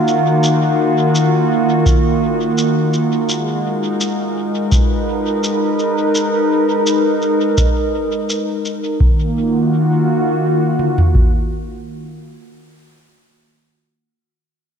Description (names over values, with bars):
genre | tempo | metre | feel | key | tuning
ambient dub | 84 BPM | 4/4 | straight | Eb minor | A4 = 435 Hz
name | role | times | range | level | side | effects
warm analog pad | sustained chords | 0.0-12.4 s | Eb3 to Cb5 | -15 LUFS | equal | lush chorus
shaker | drums | 0.1-8.8 s | none | -26 LUFS | left 1 dB | dub echo
booming analog drum machine | drums | 1.9-11.3 s | kick drum, toms | -14 LUFS | equal | none
room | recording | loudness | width
wet lush hall reverb, RT60 1.8 s, digital ambience | dreamy mix soaked in reverb | -14 LUFS | side -7 dB against mid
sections
0.0-9.0 A section; 9.0-11.9 B section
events
none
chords
0.0 Ebmadd9; 3.3 Abm9; 9.0 Ebmadd9